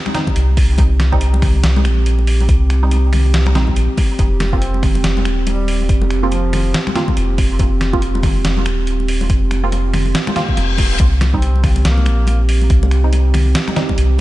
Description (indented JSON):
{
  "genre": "deep dubstep",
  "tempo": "141 BPM",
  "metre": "4/4",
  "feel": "swing 59% on 16ths, half-time",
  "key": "C minor",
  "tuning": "A4 = 440 Hz",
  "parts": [
    { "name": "dark analog pad", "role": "sustained chords", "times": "0.0-14.2 s", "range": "C4 to G4", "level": "-24 LUFS", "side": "right 4 dB", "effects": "chorus" },
    { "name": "filtered dub chord stab", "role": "stabs", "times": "0.1-13.9 s", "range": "G3 to F4", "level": "-25 LUFS", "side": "right 3 dB", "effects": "phaser, cassette tape, dub echo" },
    { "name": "trip hop sampler-style drum kit", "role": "drums", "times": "0.1-14.1 s", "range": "finger snaps, hi-hat, snare drum", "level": "-23 LUFS", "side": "equal", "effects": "none" },
    { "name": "congas", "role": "percussion", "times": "0.1-14.2 s", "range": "none", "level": "-26 LUFS", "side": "left 3 dB", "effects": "none" },
    { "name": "electronic kick drum", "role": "drums", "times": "0.3-14.0 s", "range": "none", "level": "-16 LUFS", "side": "equal", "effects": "overdrive" },
    { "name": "soft dub sub bass", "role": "bass", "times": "0.4-14.2 s", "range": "Eb1 to C2", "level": "-15 LUFS", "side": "equal", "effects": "none" },
    { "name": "warm duduk", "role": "melody", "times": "4.5-6.8, 11.3-12.5 s", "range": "F3 to C4", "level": "-29 LUFS", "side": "equal", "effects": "dub echo" },
    { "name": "reverse cymbal", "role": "sound effects", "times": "10.3-11.0 s", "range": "none", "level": "-24 LUFS", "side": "left 4 dB", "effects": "none" }
  ],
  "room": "light reverb, digital ambience",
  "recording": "nothing above 10.9 kHz",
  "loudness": "-13 LUFS",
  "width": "side -16 dB against mid",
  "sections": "0.0-14.2 A section",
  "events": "reverse cymbal 10.3-11.0",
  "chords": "0.0 C5; 4.2 F5; 11.0 C5"
}